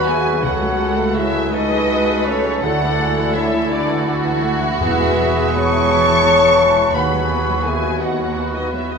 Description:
cinematic, emotional film score for orchestra; 56 BPM (dotted quarters); 6/8; rubato; E major; A4 = 443 Hz
muted studio violin section; melody; 0.0-9.0 s; C#5 to C#6; -21 LUFS; left 1 dB
dark clarinet; second line; 0.0-8.9 s; E4 to G#4; -26 LUFS; equal
mellow flute section; second line; 0.0-9.0 s; A4 to A5; -25 LUFS; equal
muted studio violin section; second line; 0.0-9.0 s; E4 to B4; -24 LUFS; right 1 dB
warm oboe; second line; 0.0-9.0 s; A4 to B4; -28 LUFS; right 3 dB
clear concert grand piano; accompaniment; 0.0-9.0 s; C#2 to C#5; -25 LUFS; left 2 dB
muted studio viola section; accompaniment; 0.0-9.0 s; C#3 to F#4; -27 LUFS; right 2 dB
mellow French horn section; sustained chords; 0.0-9.0 s; C#4 to C#5; -21 LUFS; left 4 dB
muted studio cello section; bass; 0.0-9.0 s; C#2 to E2; -26 LUFS; right 3 dB
muted studio double bass section; bass; 0.0-9.0 s; E1 to D#2; -27 LUFS; right 5 dB
timpani; percussion; 4.8-5.9 s; E2; -28 LUFS; equal
wet scoring stage reverb, RT60 1.8 s; minimal, uncompressed stereo recording; -14 LUFS; side -5 dB against mid
0.0-9.0 A section
0.4 F#madd9/C#; 2.6 Dsus2; 4.8 E; 6.9 B/D#

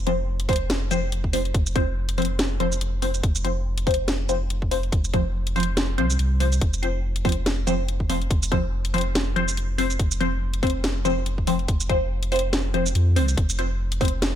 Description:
deep dubstep; 142 BPM; 4/4; swing 56% on 16ths, half-time; A4 = 441 Hz
saturated sub bass; bass; 0.0-14.4 s; F1 to F2; -25 LUFS; equal
filtered dub chord stab; stabs; 0.1-14.1 s; F3 to C5; -26 LUFS; left 2 dB; phaser, lush chorus, dub echo
garage drum kit; drums; 0.1-14.3 s; hi-hat, shaker, snare drum; -28 LUFS; equal
electronic kick drum; drums; 0.5-14.1 s; -23 LUFS; equal
light reverb, digital ambience; -21 LUFS; side -10 dB against mid
0.0-14.4 A section
0.0 F5

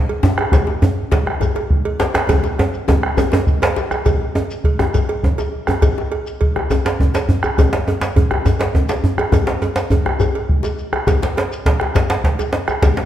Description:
west african traditional, West African drum ensemble; 137 BPM (dotted quarters); 12/8; straight
cowbell; percussion; 0.1-13.0 s; -24 LUFS; right 5 dB
djembe; percussion; 0.2-13.1 s; -22 LUFS; left 5 dB
djembe; percussion; 0.2-13.1 s; -19 LUFS; right 1 dB
shekere; percussion; 0.2-13.0 s; -24 LUFS; left 2 dB
bombo; percussion; 0.4-13.0 s; -19 LUFS; equal
wet recital hall reverb, RT60 1.5 s; -15 LUFS; side -11 dB against mid
0.0-4.1 A section; 4.1-13.1 A section
drum fill 2.3-4.1

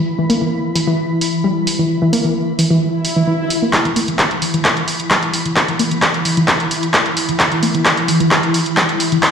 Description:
driving peak-time techno; 131 BPM; 4/4; straight; A4 = 440 Hz
swarming drone; drone; 0.0-9.3 s; E3 to E4; -20 LUFS; left 1 dB; built-in reverb, sidechain pumping
warbly dusty pluck; riff; 0.2-9.2 s; E3 to A#3; -18 LUFS; equal; chorus, sidechain pumping, dub echo
punchy analog drum machine; drums; 0.3-9.3 s; handclaps, hi-hat; -16 LUFS; equal; low-pass filter on snare, sidechain pumping on hats, low-pass filter on hats, sidechain pumping on perc, low-pass filter on perc, sidechain pumping on cymbals, low-pass filter on cymbals
swell; sound effects; 2.9-3.7 s; -23 LUFS; right 2 dB
electronic kick drum; drums; 3.7-9.3 s; -22 LUFS; equal; high-pass filter on kick
wet digital room reverb, RT60 1.2 s, digital ambience; played on a big sound system in a bare room, large studio reverb; -13 LUFS; side -7 dB against mid
0.0-3.7 A section; 3.7-9.3 B section
swell 2.9-3.7; build-up 3.7-9.3; drum fill 3.7-9.3

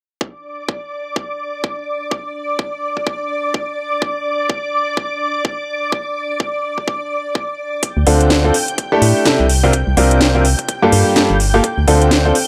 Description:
piano house; 126 BPM; 4/4; swing 59% on 16ths; D minor; A4 = 440 Hz
analog string pad; sustained chords; 0.2-12.5 s; D5 to G6; -24 LUFS; equal; ensemble chorus, sidechain pumping
electronic kick drum; drums; 0.2-12.2 s; -25 LUFS; equal; high-pass filter on kick, high-pass filter on room
house drum kit; drums; 7.8-12.5 s; hi-hat, snare drum; -20 LUFS; equal; overdrive
organ-like FM bass; bass; 8.0-12.3 s; G1 to A2; -17 LUFS; equal; sidechain pumping
clear upright piano; riff; 8.1-12.3 s; G2 to Bb4; -16 LUFS; equal; sidechain pumping, analog delay
digital ambience; dry, gritty hardware recording; -17 LUFS; mono
0.2-12.5 A section
0.2 N.C.; 7.8 Dm7; 8.5 A7sus4; 9.5 C9sus4; 10.7 Gm9; 11.6 Dm7

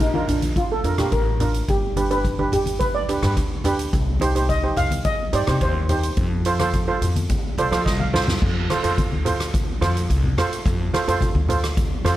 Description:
calypso; 107 BPM; 4/4; straight; A4 = 441 Hz
steel pan; melody; 0.0-6.2 s; D4 to F5; -24 LUFS; equal
steel pan; accompaniment; 0.0-12.2 s; D4 to F5; -24 LUFS; right 3 dB
upright bass; bass; 0.0-12.2 s; G1 to F3; -24 LUFS; left 1 dB
soft-mallet drum kit; drums; 0.0-12.2 s; crash cymbal, hi-hat, kick drum, rim click, snare drum; -24 LUFS; equal
congas; percussion; 0.1-12.2 s; -27 LUFS; left 1 dB
light reverb; -19 LUFS; side -14 dB against mid
0.0-8.4 A section; 8.4-12.2 B section
steel pan solo 0.0-8.4; steel pan fill 7.3-8.4; drum fill 7.9-8.4
0.0 Bb; 1.7 G; 3.9 Cm; 6.2 F

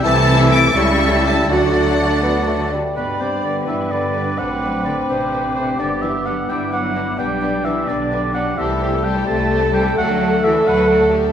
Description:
quick classical-period movement for symphony orchestra; 86 BPM (dotted quarters); 6/8; straight; G major; A4 = 440 Hz
rich studio violin section; melody; 0.0-11.3 s; A4 to D6; -25 LUFS; left 3 dB
large flute ensemble; second line; 0.0-11.1 s; A5 to A6; -27 LUFS; equal
warm oboe; second line; 0.0-11.1 s; B4 to A5; -24 LUFS; right 1 dB
warm studio violin section; second line; 0.0-11.3 s; A3 to E5; -28 LUFS; left 4 dB
clear bassoon; accompaniment; 0.0-11.3 s; E3 to C4; -24 LUFS; right 1 dB
rich studio viola section; accompaniment; 0.0-11.3 s; E3 to D5; -23 LUFS; right 2 dB
dark French horn section; sustained chords; 0.0-11.3 s; A3 to A4; -23 LUFS; left 2 dB
rich studio cello section; bass; 0.0-11.1 s; B2 to A3; -24 LUFS; left 1 dB
rich studio double bass section; bass; 0.0-11.3 s; G1 to G2; -23 LUFS; right 2 dB
wet scoring stage reverb, RT60 1.6 s; -15 LUFS; side -9 dB against mid
0.0-3.0 A section; 3.0-11.3 B section
0.0 Am/C; 0.8 A7/C#; 1.5 D; 3.0 G; 4.4 D7/A; 5.8 G; 7.2 G/B; 8.6 Am7/C; 10.0 D

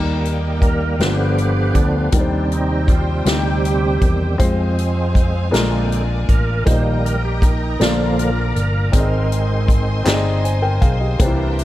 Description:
slow gospel; 53 BPM (dotted quarters); 6/8; straight; A4 = 442 Hz
warm concert grand piano; accompaniment; 0.0-11.6 s; G2 to Ab5; -23 LUFS; left 2 dB
bright tonewheel organ; sustained chords; 0.0-11.6 s; C3 to C5; -22 LUFS; right 2 dB; fast rotary speaker, chorus vibrato
clear symphonic string section; sustained chords; 0.0-11.6 s; G4 to C6; -31 LUFS; left 2 dB
fingered electric bass; bass; 0.0-11.6 s; G1 to F2; -20 LUFS; equal
natural country drum kit; drums; 0.3-11.6 s; hi-hat, kick drum, snare drum; -18 LUFS; equal
group handclap; percussion; 10.1-10.4 s; -30 LUFS; right 2 dB
light reverb, studio ambience; -15 LUFS; side -14 dB against mid
0.0-11.6 A section
tonewheel organ solo 0.0-11.6
0.0 Eb; 1.0 G7; 2.1 Cm/Eb; 4.4 Fm; 5.5 Bb7; 6.7 Eb/Bb; 7.8 Bb; 8.9 Ab

